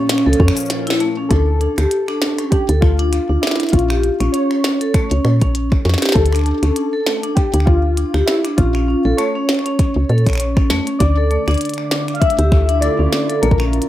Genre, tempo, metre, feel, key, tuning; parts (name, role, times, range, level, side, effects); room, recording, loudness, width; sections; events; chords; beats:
IDM; 99 BPM; 4/4; swing 56% on 16ths; D harmonic minor; A4 = 440 Hz
warbly lo-fi synth keys; melody; 0.0-13.9 s; E4 to F5; -22 LUFS; left 3 dB; chorus, digital delay
soft string machine; sustained chords; 0.0-1.3, 11.4-13.9 s; Bb2 to F4; -26 LUFS; equal; ensemble chorus
vibraphone with medium hard mallets; arpeggios; 0.0-13.7 s; A3 to Db5; -20 LUFS; equal; vintage 12-bit sampler grit, digital delay
glitchy drum kit; drums; 0.1-13.9 s; finger snaps, hi-hat, shaker, snare drum; -23 LUFS; equal
woody FM bass; bass; 0.3-13.8 s; Bb1 to Bb2; -16 LUFS; equal; tube saturation
electronic kick drum; drums; 0.4-13.6 s; -16 LUFS; equal
moderate studio reverb, RT60 0.6 s; rough home demo mix; -14 LUFS; side -13 dB against mid
0.0-1.3 A section; 1.3-13.9 B section
drum fill 0.7-1.3; band accent 0.9-1.2
0.0 Bbm; 1.3 Dm; 3.7 Bbm; 6.2 Dm; 8.6 Bbm; 11.0 Dm
0.10 0.70 | 1.31 1.91 2.52 3.12 | 3.73 4.34 4.94 5.55 | 6.16 6.76 7.37 7.97 | 8.58 9.19 9.79 10.40 | 11.00 11.61 12.22 12.82 | 13.43